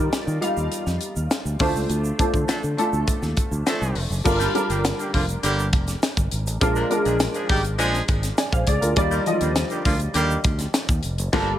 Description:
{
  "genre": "polished 1980s jazz-funk pop",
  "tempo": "102 BPM",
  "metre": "4/4",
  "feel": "straight",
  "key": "G minor",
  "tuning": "A4 = 438 Hz",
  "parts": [
    { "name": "warm baby grand piano", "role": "accompaniment", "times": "0.0-11.6 s", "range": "F3 to Ab5", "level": "-25 LUFS", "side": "equal", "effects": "ensemble chorus" },
    { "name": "fingered electric bass", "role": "bass", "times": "0.0-11.5 s", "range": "F1 to Eb3", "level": "-25 LUFS", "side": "equal", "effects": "none" },
    { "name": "tight funk drum kit", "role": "drums", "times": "0.1-11.5 s", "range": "crash cymbal, hi-hat, kick drum, snare drum", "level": "-24 LUFS", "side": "equal", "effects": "none" },
    { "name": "tube shaker", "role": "percussion", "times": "0.1-11.3 s", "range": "none", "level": "-38 LUFS", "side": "right 6 dB", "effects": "none" },
    { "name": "warm horn section", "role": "second line", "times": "2.5-11.5 s", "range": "D3 to Bb4", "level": "-26 LUFS", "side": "right 1 dB", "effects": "digital delay" }
  ],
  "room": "small room reverb",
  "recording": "none",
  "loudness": "-20 LUFS",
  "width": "side -12 dB against mid",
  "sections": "0.0-4.3 A section; 4.3-11.6 B section",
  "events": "band accent 1.9-4.3, 11.3",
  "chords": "0.0 Ebmaj9; 1.6 Dm7; 4.3 Gm7; 6.6 Bb7; 9.0 Ebmaj9",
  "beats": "0.13 0.72 1.31 | 1.90 2.49 3.08 3.66 | 4.25 4.84 5.43 6.02 | 6.61 7.20 7.79 8.38 | 8.97 9.56 10.15 10.74 | 11.33"
}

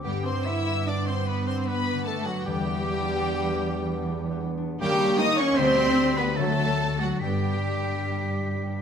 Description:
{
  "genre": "classical",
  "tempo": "75 BPM",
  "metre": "3/4",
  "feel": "uneven beats, rubato",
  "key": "G major",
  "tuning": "A4 = 440 Hz",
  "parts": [
    { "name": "warm symphonic violin section", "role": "melody", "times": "0.0-8.8 s", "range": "F#5 to E6", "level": "-33 LUFS", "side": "left 4 dB", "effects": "none" },
    { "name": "mellow silver concert flute", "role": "second line", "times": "0.0-8.8 s", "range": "Db6 to B6", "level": "-36 LUFS", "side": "left 2 dB", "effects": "none" },
    { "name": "warm symphonic violin section", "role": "second line", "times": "0.0-8.8 s", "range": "F#4 to E5", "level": "-34 LUFS", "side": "left 3 dB", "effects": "none" },
    { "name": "warm bassoon", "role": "accompaniment", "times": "0.0-8.8 s", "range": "F#3 to B3", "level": "-37 LUFS", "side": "right 3 dB", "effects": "none" },
    { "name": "clear trombone section", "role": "sustained chords", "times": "0.0-7.6 s", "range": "B2 to B3", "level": "-36 LUFS", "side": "right 4 dB", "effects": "none" },
    { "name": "mellow French horn section", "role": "sustained chords", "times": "0.0-8.8 s", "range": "F#3 to E4", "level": "-33 LUFS", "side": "left 2 dB", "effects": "none" },
    { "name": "concert harp", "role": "arpeggios", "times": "0.0-8.8 s", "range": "G2 to B4", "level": "-33 LUFS", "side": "left 10 dB", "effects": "none" },
    { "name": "clear trumpet", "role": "stabs", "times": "0.0-8.8 s", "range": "F#4 to E5", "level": "-33 LUFS", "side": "right 1 dB", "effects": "none" },
    { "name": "warm studio double bass section", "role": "bass", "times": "0.0-8.8 s", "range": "D2 to G2", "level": "-30 LUFS", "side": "right 4 dB", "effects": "none" },
    { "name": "warm symphonic cello section", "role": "bass", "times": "0.0-8.8 s", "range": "F#3 to E4", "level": "-32 LUFS", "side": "right 2 dB", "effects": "none" },
    { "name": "rich symphonic viola section", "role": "accompaniment", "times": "0.1-8.8 s", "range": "F#3 to E4", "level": "-33 LUFS", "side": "right 1 dB", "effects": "none" }
  ],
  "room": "moderate scoring stage reverb, RT60 1.9 s",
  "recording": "none",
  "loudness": "-23 LUFS",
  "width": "side -7 dB against mid",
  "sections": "0.0-8.8 A section",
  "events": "none",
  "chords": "0.0 G; 2.5 Em7; 4.8 Eb7; 5.6 G/D; 6.4 D; 7.2 G",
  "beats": "| 0.04 0.87 1.67 | 2.46 3.26 4.05 | 4.82 5.58 6.38 | 7.23 8.09"
}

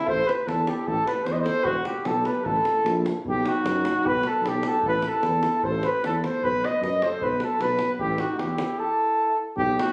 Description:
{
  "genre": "balkan folk, Balkan brass band",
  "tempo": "152 BPM",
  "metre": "2/4",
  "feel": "straight",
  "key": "A dorian sharp4",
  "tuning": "A4 = 440 Hz",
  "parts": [
    { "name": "mellow cornet", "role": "melody", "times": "0.0-9.9 s", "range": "F#4 to D#5", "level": "-26 LUFS", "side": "equal", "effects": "none" },
    { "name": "mellow alto saxophone", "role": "second line", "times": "0.0-9.9 s", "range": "B3 to B4", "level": "-36 LUFS", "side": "equal", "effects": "none" },
    { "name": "mellow tuba", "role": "bass", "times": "0.1-9.8 s", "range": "E1 to F#2", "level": "-31 LUFS", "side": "equal", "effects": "none" },
    { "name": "davul", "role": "percussion", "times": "0.1-9.9 s", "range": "none", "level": "-37 LUFS", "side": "equal", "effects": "none" }
  ],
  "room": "moderate studio reverb, RT60 0.6 s",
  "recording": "recorded on a phone in the room, studio reverb, compression",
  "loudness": "-24 LUFS",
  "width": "mono",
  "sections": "0.0-3.2 A section; 3.2-9.6 B section",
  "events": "none",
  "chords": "0.1 A5; 1.7 E5; 2.5 A5; 3.2 B; 4.8 A5; 6.4 B5; 8.0 A5",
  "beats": "| 0.07 0.47 | 0.86 1.26 | 1.66 2.06 | 2.45 2.85 | 3.25 3.64 | 4.04 4.44 | 4.83 5.23 | 5.62 6.02 | 6.42 6.81 | 7.21 7.60 | 8.00 8.39 | 8.79 9.18 | 9.58"
}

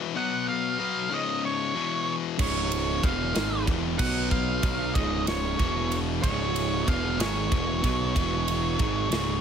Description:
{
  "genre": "quiet-loud alternative rock",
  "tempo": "62 BPM (dotted quarters)",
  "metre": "6/8",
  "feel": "straight",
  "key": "unclear",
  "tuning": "A4 = 441 Hz",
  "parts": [
    { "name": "distorted electric guitar", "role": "riff", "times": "0.0-9.4 s", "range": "Db2 to Cb4", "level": "-30 LUFS", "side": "left 11 dB", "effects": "overdrive" },
    { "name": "octave-fuzz lead guitar", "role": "melody", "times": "0.2-9.4 s", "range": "Db5 to Gb5", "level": "-30 LUFS", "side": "right 2 dB", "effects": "distortion, slapback echo, plate reverb" },
    { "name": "fuzz guitar", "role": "riff", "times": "2.4-9.4 s", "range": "Db2 to Cb4", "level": "-31 LUFS", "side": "right 18 dB", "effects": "distortion" },
    { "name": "fuzz picked electric bass", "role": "bass", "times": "2.4-9.4 s", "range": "Db1 to Cb2", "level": "-31 LUFS", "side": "right 1 dB", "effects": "overdrive" },
    { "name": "big rock drum kit", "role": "drums", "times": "2.4-9.3 s", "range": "crash cymbal, kick drum, ride cymbal, snare drum", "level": "-29 LUFS", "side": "right 1 dB", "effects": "none" }
  ],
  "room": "little or no reverb",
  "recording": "none",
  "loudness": "-24 LUFS",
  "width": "side -8 dB against mid",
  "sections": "0.0-9.4 A section",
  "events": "none",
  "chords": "0.1 Cb5; 0.8 Db5; 1.7 E5; 2.4 Db; 4.0 Cb5; 4.6 Db5; 5.6 E5; 6.2 Db5; 8.2 E5; 8.8 Db5",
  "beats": "| 0.47 1.43 | 2.39 3.35 | 4.31 5.27 | 6.23 7.19 | 8.15 9.11"
}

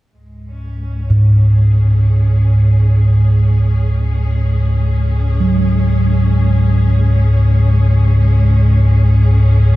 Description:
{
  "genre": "dark ambient drone",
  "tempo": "free time",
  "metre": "none",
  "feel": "none",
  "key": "unclear",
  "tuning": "A4 = 440 Hz",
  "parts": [
    { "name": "warm studio cello section", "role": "sustained chords", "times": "0.1-9.8 s", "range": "G#3 to G#4", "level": "-26 LUFS", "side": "right 2 dB", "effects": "shimmer reverb" },
    { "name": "deep rumbling drone", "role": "drone", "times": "0.5-9.8 s", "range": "C#2 to G#2", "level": "-12 LUFS", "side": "equal", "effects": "built-in reverb" },
    { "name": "gamelan-type bossed gongs", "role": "arpeggios", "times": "1.1-9.8 s", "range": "G#2 to F#3", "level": "-16 LUFS", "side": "right 1 dB", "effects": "none" }
  ],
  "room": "wet cathedral reverb, RT60 5.2 s",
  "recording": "dark, warm production",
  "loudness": "-10 LUFS",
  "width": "side -17 dB against mid",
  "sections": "0.1-9.8 A section",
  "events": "fade-in on cello section 0.1-9.8",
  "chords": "0.1 C#5",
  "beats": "free time"
}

